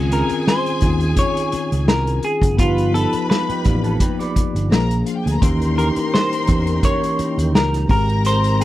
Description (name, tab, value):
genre	lush 1970s-style soul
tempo	85 BPM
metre	4/4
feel	swing 54% on 16ths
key	unclear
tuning	A4 = 441 Hz
part	warm symphonic string section	second line	0.0-8.6 s	F4 to C6	-28 LUFS	left 1 dB	none
part	mellow tine electric piano	accompaniment	0.0-8.6 s	Eb3 to G5	-23 LUFS	left 1 dB	medium stereo tremolo
part	fingered electric bass	bass	0.0-8.6 s	Gb1 to Fb2	-19 LUFS	equal	none
part	semi-hollow electric guitar	melody	0.1-8.6 s	F4 to Db5	-22 LUFS	equal	lush chorus
part	vintage drum kit	drums	0.1-8.6 s	hi-hat, kick drum, snare drum	-19 LUFS	equal	none
part	electric guitar through a small old amp	riff	3.3-4.7 s	D4 to D5	-30 LUFS	right 4 dB	none
part	percussive tonewheel organ	sustained chords	5.4-8.6 s	Fb3 to G5	-29 LUFS	right 2 dB	slow rotary speaker, chorus vibrato
room	little or no reverb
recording	none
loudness	-16 LUFS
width	side -15 dB against mid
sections	0.0-8.6 A section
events	none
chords	0.0 Dbmaj9; 2.6 G7b13; 4.7 Bb7; 5.4 Eb7b9; 7.9 Abmaj9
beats	0.46 1.17 1.88 | 2.59 3.29 4.00 4.71 | 5.42 6.13 6.83 7.54 | 8.25